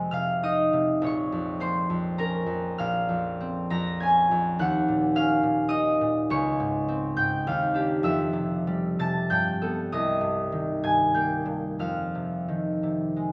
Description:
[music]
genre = classical, solo harp piece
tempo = 86-111 BPM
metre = 3/4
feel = rubato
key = F minor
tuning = A4 = 440 Hz
[part]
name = concert harp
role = solo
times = 0.0-13.3 s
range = Bb1 to Bb6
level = -26 LUFS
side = equal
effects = none
[sound]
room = wet recital hall reverb, RT60 1.4 s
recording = none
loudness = -26 LUFS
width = mono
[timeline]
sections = 0.0-13.3 A section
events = none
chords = 0.0 Fm9; 1.0 Bbm9; 4.6 Ebm7; 6.3 Dbmaj9; 7.5 Ebmaj9; 8.0 Fmaj9; 9.3 Gadd9; 9.9 Cm7; 11.8 Fm9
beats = 0.43 | 1.03 1.61 2.18 | 2.80 3.41 4.03 | 4.58 5.13 5.71 | 6.29 6.88 7.46 | 8.03 8.65 9.29 | 9.89 10.49 11.11 | 11.77 12.47 13.15

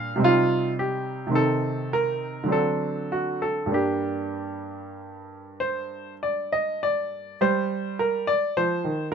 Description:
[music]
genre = classical, baroque-style suite movement for grand piano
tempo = 47-55 BPM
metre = 3/4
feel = rubato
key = G minor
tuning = A4 = 438 Hz
[part]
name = clear baby grand piano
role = solo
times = 0.0-9.1 s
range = G2 to F5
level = -23 LUFS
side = right 1 dB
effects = none
[sound]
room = moderate studio reverb, RT60 0.6 s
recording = none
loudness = -23 LUFS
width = side -7 dB against mid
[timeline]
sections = 0.0-7.4 A section; 7.4-9.1 B section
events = none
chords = 0.2 Cm; 1.4 Adim/C; 2.5 D7; 3.7 Gm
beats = | 0.24 1.36 2.52 | 3.74 4.99 6.22 | 7.42 8.57

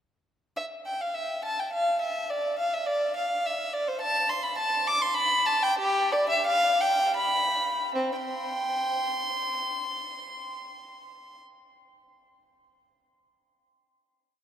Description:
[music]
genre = classical, baroque-style suite movement for unaccompanied violin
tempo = 73-107 BPM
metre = 3/4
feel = rubato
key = C major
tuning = A4 = 440 Hz
[part]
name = rich violin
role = solo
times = 0.6-11.4 s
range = C4 to D6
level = -25 LUFS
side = equal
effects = none
[sound]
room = wet cathedral reverb, RT60 5.3 s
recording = in a vast, echoing space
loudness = -25 LUFS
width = side -10 dB against mid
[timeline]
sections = 0.6-8.0 A section; 8.0-12.5 final chord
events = slowing down 3.2-8.0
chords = none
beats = | 0.58 1.16 1.75 | 2.33 2.90 3.47 | 4.03 4.60 5.17 | 5.79 6.46 7.17 | 7.95 8.71 9.46 | 10.21 10.96

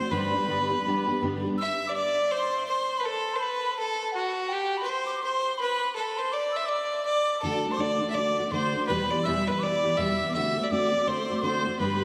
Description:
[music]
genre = celtic folk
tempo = 164 BPM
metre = 4/4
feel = swing 61% on 8ths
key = unclear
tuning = A4 = 440 Hz
[part]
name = rich fiddle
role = melody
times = 0.0-12.0 s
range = F#4 to E5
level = -30 LUFS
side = equal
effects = delay
[part]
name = mellow hollow tin whistle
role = second line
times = 0.0-12.0 s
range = F#5 to E6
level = -33 LUFS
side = equal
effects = none
[part]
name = fingerpicked steel-string acoustic guitar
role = accompaniment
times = 0.0-1.6, 7.4-12.0 s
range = E2 to G4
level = -31 LUFS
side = equal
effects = ensemble chorus
[sound]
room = wet lush hall reverb, RT60 3.0 s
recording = dreamy mix soaked in reverb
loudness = -27 LUFS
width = mono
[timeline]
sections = 0.0-1.6 A section; 1.6-12.0 A section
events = none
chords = 0.1 G; 1.6 N.C.; 6.0 D; 8.9 Em; 10.3 D7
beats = | 0.12 0.49 0.85 1.22 | 1.58 1.95 2.31 2.68 | 3.04 3.40 3.77 4.13 | 4.50 4.87 5.23 5.59 | 5.96 6.33 6.69 7.05 | 7.42 7.78 8.15 8.51 | 8.88 9.24 9.61 9.97 | 10.34 10.70 11.07 11.43 | 11.80

